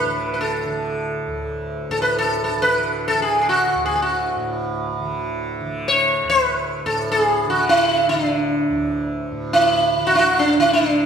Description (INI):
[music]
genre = indian classical, Hindustani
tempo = free time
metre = none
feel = none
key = D raga yaman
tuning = A4 = 438 Hz
[part]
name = sitar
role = melody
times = 0.0-11.1 s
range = D4 to C#5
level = -18 LUFS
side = equal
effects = none
[part]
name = tanpura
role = drone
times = 0.0-11.1 s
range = D2 to D3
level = -26 LUFS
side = right 2 dB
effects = none
[sound]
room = wet recital hall reverb, RT60 1.8 s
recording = recorded in a church or concert hall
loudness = -17 LUFS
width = side -7 dB against mid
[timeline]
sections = 0.0-11.1 A section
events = none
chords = none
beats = free time